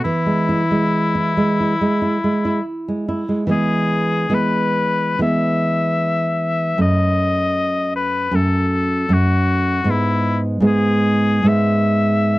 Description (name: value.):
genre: romantic duo for oboe and classical guitar.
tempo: 65-80 BPM.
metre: 4/4.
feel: rubato.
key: E major.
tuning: A4 = 440 Hz.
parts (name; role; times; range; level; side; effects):
bright oboe; melody; 0.0-12.4 s; E4 to E5; -20 LUFS; left 3 dB; none.
nylon-string guitar; accompaniment; 0.0-12.4 s; F#2 to E4; -17 LUFS; right 1 dB; none.
room: moderate booth ambience, RT60 0.2 s.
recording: cassette tape.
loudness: -16 LUFS.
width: side -18 dB against mid.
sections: 0.0-3.5 A section; 3.5-12.4 B section.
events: none.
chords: 0.0 E; 6.8 D#dim/F#; 9.9 E/G#.